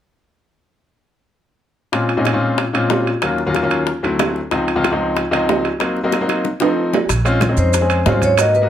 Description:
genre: Afro-Cuban jazz.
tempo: 186 BPM.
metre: 4/4.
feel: straight.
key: Bb minor.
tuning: A4 = 441 Hz.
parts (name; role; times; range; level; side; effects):
clear baby grand piano; accompaniment; 1.9-8.7 s; Db2 to Ab4; -18 LUFS; left 1 dB; none.
bongos; percussion; 1.9-8.7 s; none; -25 LUFS; left 8 dB; none.
timbales; percussion; 1.9-8.5 s; none; -22 LUFS; right 6 dB; none.
upright bass; bass; 7.1-8.7 s; Bb1 to Ab2; -17 LUFS; right 1 dB; none.
congas; percussion; 7.1-8.7 s; none; -24 LUFS; equal; none.
maracas; percussion; 7.1-8.7 s; none; -29 LUFS; right 10 dB; none.
vibraphone with medium hard mallets; melody; 7.6-8.7 s; Cb5 to Eb5; -16 LUFS; equal; none.
room: moderate club reverb, RT60 0.8 s.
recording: none.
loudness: -15 LUFS.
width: side -10 dB against mid.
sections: 1.9-7.1 A section; 7.1-8.7 B section.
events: drum fill 6.1-7.1.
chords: 1.9 Bbm7; 3.2 Ebm7; 3.9 D9; 4.5 Dbmaj7; 5.8 Cm7b5; 6.5 F7; 7.1 Bbm7.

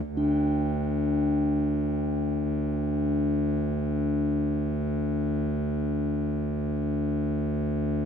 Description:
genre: world meditative, free-time meditation music.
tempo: free time.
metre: none.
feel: none.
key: unclear.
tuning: A4 = 440 Hz.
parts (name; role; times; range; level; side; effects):
pedal harmonium; drone; 0.0-8.1 s; D2; -26 LUFS; equal; stereo widening.
bronze singing bowl; texture; 0.2-8.1 s; D4; -30 LUFS; left 1 dB; none.
room: light reverb.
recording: none.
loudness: -25 LUFS.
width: side -7 dB against mid.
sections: 0.0-8.1 A section.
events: none.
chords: none.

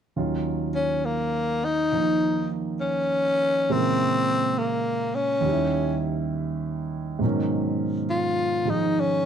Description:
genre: jazz ballad.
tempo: 68 BPM.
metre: 4/4.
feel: swing 66% on 8ths.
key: Eb minor.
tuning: A4 = 440 Hz.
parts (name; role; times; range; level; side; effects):
warm grand piano; accompaniment; 0.2-9.3 s; Eb2 to Bb4; -25 LUFS; right 3 dB; none.
growling tenor saxophone; melody; 0.8-9.3 s; Bb3 to F4; -23 LUFS; left 2 dB; none.
room: light reverb.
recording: close, detailed microphones.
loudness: -22 LUFS.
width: side -8 dB against mid.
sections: 0.2-9.3 A section.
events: none.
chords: 0.2 Ebm9; 3.7 Bbm7b5; 5.4 Eb7b9; 7.2 Abm11.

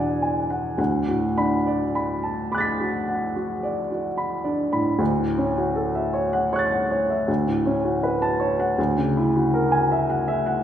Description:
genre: classical, impressionist solo piano.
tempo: 68-82 BPM.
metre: 5/4.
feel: rubato.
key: D major.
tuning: A4 = 440 Hz.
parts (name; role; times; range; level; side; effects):
warm baby grand piano; solo; 0.0-10.6 s; D2 to B6; -20 LUFS; equal; none.
room: wet concert hall reverb, RT60 1.6 s.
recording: heard from further back in the room.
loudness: -20 LUFS.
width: side -10 dB against mid.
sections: 0.0-5.0 A section; 5.0-10.6 B section.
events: none.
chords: 0.0 E9; 0.8 D6; 5.0 Dmaj9; 7.3 Bm9/D; 8.8 F#9/D.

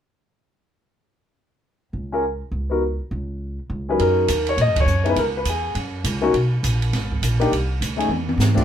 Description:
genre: jazz piano trio.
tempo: 205 BPM.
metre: 4/4.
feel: swing 63% on 8ths.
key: F# major.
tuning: A4 = 440 Hz.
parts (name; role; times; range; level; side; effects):
upright bass; bass; 1.9-8.6 s; G#1 to A#2; -22 LUFS; right 1 dB; none.
warm grand piano; melody; 2.1-8.6 s; F#3 to D#5; -20 LUFS; left 2 dB; none.
open jazz drum kit; drums; 4.0-8.6 s; crash cymbal, hi-hat, kick drum, ride cymbal, snare drum, toms; -26 LUFS; right 2 dB; none.
room: moderate studio reverb, RT60 0.5 s.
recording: band playing live in one room.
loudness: -19 LUFS.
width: side -9 dB against mid.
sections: 1.6-4.0 A section; 4.0-8.6 B section.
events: band accent 4.7; drum fill 8.1.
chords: 1.6 N.C.; 4.0 F#6; 5.2 C#m; 5.7 F#5; 6.3 Bmaj7(no3); 7.5 Csus2; 8.1 N.C..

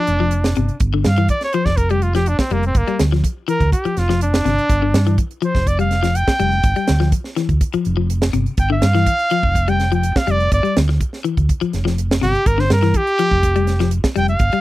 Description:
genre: afrobeat.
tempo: 124 BPM.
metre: 4/4.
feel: straight.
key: G dorian.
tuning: A4 = 440 Hz.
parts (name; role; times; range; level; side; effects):
clear trumpet; melody; 0.0-14.6 s; Bb3 to G5; -19 LUFS; right 1 dB; none.
electric guitar at the edge of break-up; arpeggios; 0.0-14.6 s; C3 to G3; -22 LUFS; left 7 dB; spring reverb.
hollow-body short-scale fingered electric bass; bass; 0.1-14.6 s; F1 to G2; -18 LUFS; right 1 dB; none.
tight funk drum kit; drums; 0.1-14.6 s; hi-hat, kick drum, snare drum; -20 LUFS; right 1 dB; none.
room: little or no reverb.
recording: dry, close 1970s-style studio recording.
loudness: -15 LUFS.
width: side -16 dB against mid.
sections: 0.0-14.6 A section.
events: trumpet solo 0.0-14.6.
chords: 0.0 G7(no3).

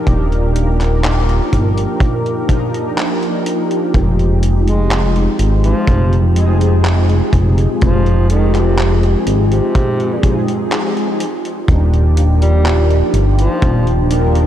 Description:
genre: vaporwave.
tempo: 62 BPM.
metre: 4/4.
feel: straight.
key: F dorian.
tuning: A4 = 440 Hz.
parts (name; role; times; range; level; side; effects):
mellow synth brass; accompaniment; 0.0-14.5 s; F3 to Bb4; -19 LUFS; equal; ensemble chorus, analog delay.
warbly tape-like pad; sustained chords; 0.0-14.5 s; Ab3 to D6; -24 LUFS; left 1 dB; chorus, built-in reverb.
chorused synth bass; bass; 0.1-14.5 s; Eb1 to Ab1; -13 LUFS; equal; none.
detuned 8-bit digital drum machine; drums; 0.1-14.5 s; handclaps, hi-hat; -24 LUFS; equal; overdrive.
kick drum; drums; 0.1-13.8 s; none; -17 LUFS; equal; none.
mellow tenor saxophone; melody; 4.7-14.0 s; C3 to Ab3; -22 LUFS; right 1 dB; vintage 12-bit sampler grit, tape echo.
room: moderate lush hall reverb, RT60 2.9 s.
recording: dreamy mix soaked in reverb, cassette tape.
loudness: -12 LUFS.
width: side -11 dB against mid.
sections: 0.0-14.5 A section.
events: none.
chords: 0.0 Ebmaj9; 3.9 Fm9; 11.2 Ebmaj9.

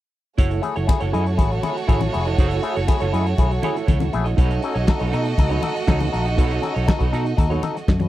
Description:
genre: disco.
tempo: 120 BPM.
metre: 4/4.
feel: straight.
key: F# dorian.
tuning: A4 = 439 Hz.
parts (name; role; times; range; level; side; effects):
warm studio violin section; second line; 0.4-8.1 s; A3 to D#5; -26 LUFS; right 5 dB; none.
auto-wah clav; accompaniment; 0.4-8.1 s; B2 to A4; -27 LUFS; left 6 dB; none.
semi-hollow electric guitar; accompaniment; 0.4-8.0 s; D#4 to D#5; -28 LUFS; right 8 dB; harmonic tremolo.
fingered electric bass; bass; 0.4-8.1 s; E#1 to B2; -22 LUFS; equal; none.
warm soul drum kit; drums; 0.4-8.1 s; handclaps, hi-hat, kick drum, snare drum; -18 LUFS; equal; none.
congas; percussion; 0.6-8.1 s; none; -29 LUFS; left 5 dB; none.
room: little or no reverb.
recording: dry, close 1970s-style studio recording.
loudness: -18 LUFS.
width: side -14 dB against mid.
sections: 0.4-8.1 A section.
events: none.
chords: 0.4 F#m7; 4.4 B9.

